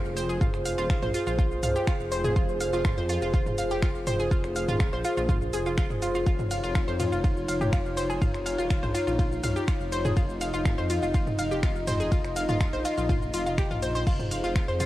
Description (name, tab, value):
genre	melodic techno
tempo	123 BPM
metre	4/4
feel	straight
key	F minor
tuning	A4 = 440 Hz
part	dark analog pad	sustained chords	0.0-14.9 s	Eb4 to Eb5	-30 LUFS	equal	chorus, sidechain pumping, cassette tape
part	downlifter	sound effects	0.0-2.4 s	none	barely audible	none	none
part	dark detuned saw bass	bass	0.1-14.9 s	Eb1 to F2	-33 LUFS	equal	sidechain pumping
part	deep house drum kit	drums	0.1-14.9 s	crash cymbal, finger snaps, hi-hat, ride cymbal, shaker, toms	-33 LUFS	equal	cassette tape, sidechain pumping on perc, sidechain pumping on hats, sidechain pumping on toms, sidechain pumping on cymbals
part	analog pluck	arpeggios	0.2-14.9 s	F4 to F6	-32 LUFS	equal	chorus, sidechain pumping, cassette tape, analog delay
part	electronic kick drum	drums	0.4-14.7 s	none	-26 LUFS	equal	cassette tape
room	light reverb, digital ambience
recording	home recording on cassette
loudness	-24 LUFS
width	side -15 dB against mid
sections	0.0-14.9 A section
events	none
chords	0.0 Fm; 6.3 Dbadd9; 14.1 Fm